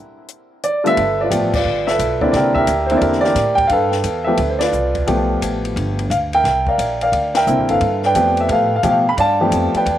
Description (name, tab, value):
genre	jazz piano trio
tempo	175 BPM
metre	4/4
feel	swing 65% on 8ths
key	G mixolydian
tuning	A4 = 440 Hz
part	compact cocktail drum kit	drums	0.3-10.0 s	crash cymbal, hi-hat, kick drum, ride cymbal, snare drum	-28 LUFS	left 4 dB	none
part	warm baby grand piano	melody	0.6-10.0 s	D3 to B5	-15 LUFS	equal	tape echo
part	upright bass	bass	1.0-10.0 s	G1 to B2	-23 LUFS	equal	none
room	wet spring reverb, RT60 2.0 s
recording	1960s-style stereo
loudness	-14 LUFS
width	side -12 dB against mid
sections	1.0-10.0 A section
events	band accent 1.5, 4.6, 7.3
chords	0.0 Gadd9 (rootless); 1.0 G9; 2.3 C9; 3.7 G9; 6.4 C9; 7.8 G9